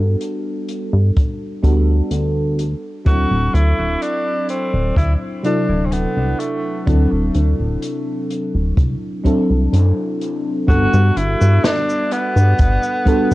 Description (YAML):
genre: vaporwave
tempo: 63 BPM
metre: 4/4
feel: straight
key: G major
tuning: A4 = 445 Hz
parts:
  - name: mellow FM electric piano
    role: accompaniment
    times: 0.0-13.3 s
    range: C3 to A4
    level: -21 LUFS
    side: equal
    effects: analog chorus, analog delay
  - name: chorused synth bass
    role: bass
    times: 0.0-13.3 s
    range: D1 to G2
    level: -15 LUFS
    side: equal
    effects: none
  - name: open jazz drum kit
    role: drums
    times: 0.2-13.3 s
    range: cabasa, hi-hat, snare drum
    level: -25 LUFS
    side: left 1 dB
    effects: vintage 12-bit sampler grit, analog delay
  - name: kick drum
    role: drums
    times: 1.2-13.3 s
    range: none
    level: -16 LUFS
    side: equal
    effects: vintage 12-bit sampler grit
  - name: warm tenor saxophone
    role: melody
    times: 3.1-13.3 s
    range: A3 to F#4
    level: -21 LUFS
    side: equal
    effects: tape echo
room: light reverb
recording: echo-heavy mix, cassette tape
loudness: -15 LUFS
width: side -17 dB against mid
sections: 0.0-10.7 A section; 10.7-13.3 B section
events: none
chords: 0.0 Gmaj9; 2.6 D9; 10.7 Gmaj9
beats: 0.21 1.16 2.11 | 3.07 4.02 4.97 5.92 | 6.88 7.83 8.78 9.73 | 10.69 11.64 12.59